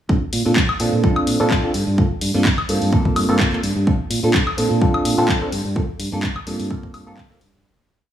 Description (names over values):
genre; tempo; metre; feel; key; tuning
filtered disco house; 127 BPM; 4/4; swing 54% on 16ths; unclear; A4 = 439 Hz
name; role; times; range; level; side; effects
reed electric piano; accompaniment; 0.1-7.4 s; Bb3 to A4; -22 LUFS; right 1 dB; overdrive, phaser, vintage 12-bit sampler grit, sidechain pumping
modern bright fingered electric bass; bass; 0.1-7.6 s; G1 to Bb2; -22 LUFS; right 1 dB; sidechain pumping
electronic kick drum; drums; 0.1-7.3 s; none; -20 LUFS; equal; overdrive
punchy analog drum machine; drums; 0.3-7.5 s; handclaps, hi-hat, woodblock; -24 LUFS; left 2 dB; overdrive, sidechain pumping on hats, sidechain pumping on perc
room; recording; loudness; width
light reverb; studio ambience; -16 LUFS; side -10 dB against mid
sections
0.1-7.7 drop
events
drop 0.1-7.7; fade-out 5.1-7.7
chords
0.1 Bbmaj9; 1.7 Gm11; 3.9 Bbmaj9; 5.5 Gm11